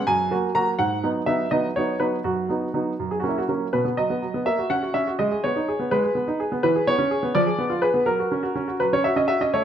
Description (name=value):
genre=classical-period piano sonatina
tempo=83 BPM (dotted quarters)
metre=6/8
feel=straight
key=unclear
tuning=A4 = 440 Hz
part: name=clear baby grand piano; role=solo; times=0.0-9.6 s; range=F#2 to A#5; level=-20 LUFS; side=right 1 dB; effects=none
room=moderate recital hall reverb, RT60 1.4 s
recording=none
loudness=-20 LUFS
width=side -9 dB against mid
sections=0.0-3.7 A section; 3.7-9.6 B section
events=none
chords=0.1 F#; 0.8 G#m7; 2.3 B/F#; 3.0 F#; 3.7 B; 4.5 F#/A#; 5.2 G#m; 6.6 C#m7/E; 7.3 Fdim7; 8.1 F#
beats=0.07 | 0.79 1.52 | 2.25 2.99 | 3.74 4.46 | 5.19 5.91 | 6.63 7.35 | 8.07 8.81 | 9.54